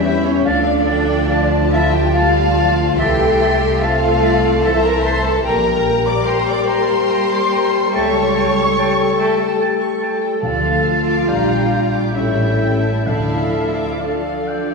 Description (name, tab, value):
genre	classical, slow romantic movement for symphony orchestra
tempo	72 BPM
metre	3/4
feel	rubato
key	D minor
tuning	A4 = 440 Hz
part	clear studio violin section	melody	0.0-14.7 s	C#5 to D6	-26 LUFS	left 5 dB	none
part	rich studio violin section	second line	0.0-14.7 s	C5 to D6	-27 LUFS	left 3 dB	none
part	silver concert flute	second line	0.0-14.7 s	C#5 to D6	-26 LUFS	left 2 dB	none
part	warm clarinet	second line	0.0-14.7 s	C#5 to G5	-27 LUFS	left 2 dB	none
part	clear studio viola section	accompaniment	0.0-14.7 s	E3 to C5	-21 LUFS	equal	none
part	mellow French horn section	sustained chords	0.0-14.7 s	F3 to A4	-21 LUFS	left 3 dB	none
part	clear studio double bass section	bass	0.0-13.8 s	A1 to E2	-21 LUFS	right 1 dB	none
part	rich studio cello section	bass	0.0-14.7 s	C#4 to D5	-21 LUFS	right 2 dB	none
part	clear oboe	second line	0.1-14.7 s	F5 to Bb5	-25 LUFS	right 1 dB	none
part	timpani	percussion	10.4-14.4 s	D3	-27 LUFS	left 1 dB	none
room	wet scoring stage reverb, RT60 1.8 s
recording	heard from further back in the room, small room ambience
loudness	-14 LUFS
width	side -3 dB against mid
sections	0.0-14.7 A section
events	none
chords	0.5 Dm; 3.0 Am/C; 5.4 Gm/Bb; 7.9 A7/C#; 10.4 Dm; 11.3 Gm/Bb; 12.1 A7; 13.1 Dm